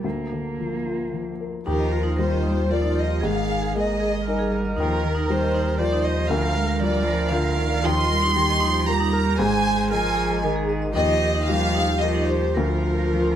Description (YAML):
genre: neoclassical piano and strings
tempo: 115 BPM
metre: 3/4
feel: rubato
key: Eb major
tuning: A4 = 440 Hz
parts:
  - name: rich cello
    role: second line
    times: 0.0-13.4 s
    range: D3 to Bb3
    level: -28 LUFS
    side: right 5 dB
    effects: none
  - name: warm upright piano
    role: accompaniment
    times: 0.0-13.4 s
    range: D2 to Bb4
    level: -27 LUFS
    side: left 4 dB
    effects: none
  - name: warm chamber violin section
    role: melody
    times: 1.7-13.4 s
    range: Bb4 to C6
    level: -25 LUFS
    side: equal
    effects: none
  - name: warm viola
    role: accompaniment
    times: 1.7-13.4 s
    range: F4 to C5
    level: -30 LUFS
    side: right 3 dB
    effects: none
  - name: vibraphone with hard mallets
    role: arpeggios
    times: 1.7-13.3 s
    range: Eb4 to Bb5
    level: -30 LUFS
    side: right 2 dB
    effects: slapback echo
  - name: warm sub bass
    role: bass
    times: 1.7-13.4 s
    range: Ab1 to Eb2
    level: -26 LUFS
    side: equal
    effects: none
room: light reverb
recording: none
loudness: -20 LUFS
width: side -10 dB against mid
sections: 0.0-1.7 A section; 1.7-13.4 B section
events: none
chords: 0.0 Bb/D; 1.7 Ebadd9; 3.2 Absus2; 4.8 Ebadd9; 6.3 Bb/D; 7.9 Ebadd9; 9.4 Absus2; 11.0 Ebadd9; 12.6 Bb/D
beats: | 0.04 0.59 1.13 | 1.67 2.19 2.71 | 3.23 3.75 4.27 | 4.78 5.29 5.80 | 6.31 6.82 7.32 | 7.85 8.37 8.88 | 9.40 9.92 10.44 | 10.96 11.49 12.02 | 12.57 13.13